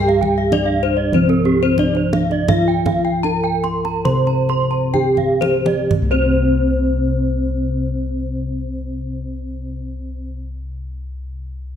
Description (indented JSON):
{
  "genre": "Balinese gamelan",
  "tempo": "59-106 BPM",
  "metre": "4/4",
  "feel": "straight",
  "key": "C slendro",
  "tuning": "A4 = 440 Hz",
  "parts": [
    { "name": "gamelan-type bronze metallophone", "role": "melody", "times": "0.0-10.4 s", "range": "C4 to C5", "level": "-21 LUFS", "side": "right 1 dB", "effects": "none" },
    { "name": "gamelan-type bronze metallophone", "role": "accompaniment", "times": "0.0-10.3 s", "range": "C3 to C4", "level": "-27 LUFS", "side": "left 2 dB", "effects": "none" },
    { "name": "gamelan-type bronze metallophone", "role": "arpeggios", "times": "0.0-10.4 s", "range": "C5 to C6", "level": "-24 LUFS", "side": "left 6 dB", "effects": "none" },
    { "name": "gamelan-type bossed gongs", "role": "bass", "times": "0.0-10.3 s", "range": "C2 to G4+25c", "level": "-21 LUFS", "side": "left 1 dB", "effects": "none" },
    { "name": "gamelan-type bronze metallophone", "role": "arpeggios", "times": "0.1-10.3 s", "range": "G4+25c to C6", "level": "-25 LUFS", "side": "right 7 dB", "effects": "none" },
    { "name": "kendang", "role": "percussion", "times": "0.1-6.4 s", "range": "none", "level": "-24 LUFS", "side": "right 3 dB", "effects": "none" }
  ],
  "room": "moderate recital hall reverb, RT60 1.5 s",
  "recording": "dark, warm production",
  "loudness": "-15 LUFS",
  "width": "side -9 dB against mid",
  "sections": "0.0-5.9 A section; 5.9-10.0 B section",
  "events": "slowing down 0.0-5.9; drum fill 4.9-5.9",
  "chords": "none",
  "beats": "0.52 1.13 1.79 | 2.48 3.24 4.05 4.93 | 5.91 6.92 7.95 8.96"
}